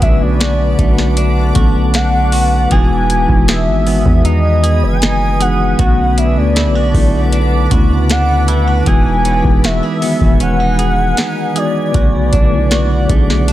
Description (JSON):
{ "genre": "contemporary R&B", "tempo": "78 BPM", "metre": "4/4", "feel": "straight", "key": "E major", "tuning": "A4 = 436 Hz", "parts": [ { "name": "warm velvety synth lead", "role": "melody", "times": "0.0-13.5 s", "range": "D5 to G#5", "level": "-19 LUFS", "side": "equal", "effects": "chorus" }, { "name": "mellow tine electric piano", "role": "accompaniment", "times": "0.0-13.5 s", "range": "C#3 to A4", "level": "-17 LUFS", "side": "left 1 dB", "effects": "medium stereo tremolo" }, { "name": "granular cloud pad", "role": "sustained chords", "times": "0.0-13.5 s", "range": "B4 to D#6", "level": "-24 LUFS", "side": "equal", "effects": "built-in reverb, sidechain pumping" }, { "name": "direct-recorded clean electric guitar", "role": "arpeggios", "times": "0.0-13.5 s", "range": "B2 to G#4", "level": "-24 LUFS", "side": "right 4 dB", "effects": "lush chorus, digital delay" }, { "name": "long sustained 808-style bass", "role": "bass", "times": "0.0-13.5 s", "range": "E1 to E2", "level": "-15 LUFS", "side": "equal", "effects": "none" }, { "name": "booming analog drum machine", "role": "drums", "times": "0.0-13.5 s", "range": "hi-hat, kick drum, snare drum", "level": "-15 LUFS", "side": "equal", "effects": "none" } ], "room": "digital ambience", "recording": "none", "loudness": "-10 LUFS", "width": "side -14 dB against mid", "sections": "0.0-13.5 A section", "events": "none", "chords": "0.0 Bm7; 2.7 Emaj7; 5.8 Bm7; 8.9 Emaj7; 11.9 Bm7" }